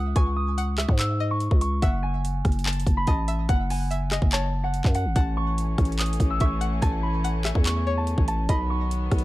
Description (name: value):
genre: hip hop, trap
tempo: 144 BPM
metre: 4/4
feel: half-time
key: unclear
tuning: A4 = 440 Hz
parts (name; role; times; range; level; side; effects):
- concert harp; melody; 0.0-9.2 s; F#5 to F#6; -30 LUFS; right 1 dB; low-pass filter, digital delay
- string-like resonator pluck; second line; 0.0-8.9 s; C#5 to G#5; -34 LUFS; left 2 dB; chorus, digital delay
- growling 808-style bass; bass; 0.0-9.2 s; F#1 to G#2; -25 LUFS; equal; none
- trap drum kit; drums; 0.2-9.2 s; handclaps, hi-hat, kick drum, rim click; -23 LUFS; equal; none
- warm chamber string section; sustained chords; 5.2-9.2 s; D#3 to C#4; -34 LUFS; left 2 dB; none
room: digital ambience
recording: dark, warm production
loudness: -22 LUFS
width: side -17 dB against mid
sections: 0.0-9.2 A section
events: none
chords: 0.0 C#m; 1.8 F#m; 5.2 A; 8.5 B